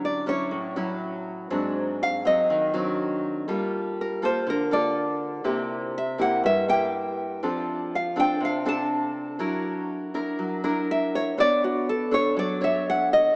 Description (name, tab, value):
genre	bossa nova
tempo	122 BPM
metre	4/4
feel	straight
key	unclear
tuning	A4 = 440 Hz
part	nylon-string guitar	melody	0.0-13.4 s	F#4 to A5	-23 LUFS	equal	none
part	nylon-string guitar	accompaniment	0.0-13.3 s	G2 to C#5	-26 LUFS	equal	lush chorus
room	wet plate reverb, RT60 3.2 s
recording	dreamy mix soaked in reverb, small speaker sound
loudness	-23 LUFS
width	side -30 dB against mid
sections	0.0-13.4 A section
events	nylon-string guitar solo 0.0-13.4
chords	0.0 Dmaj9; 1.5 G#7#11; 3.5 Gm9; 5.5 C7; 7.4 F6; 9.4 F#aug7; 11.4 Bm9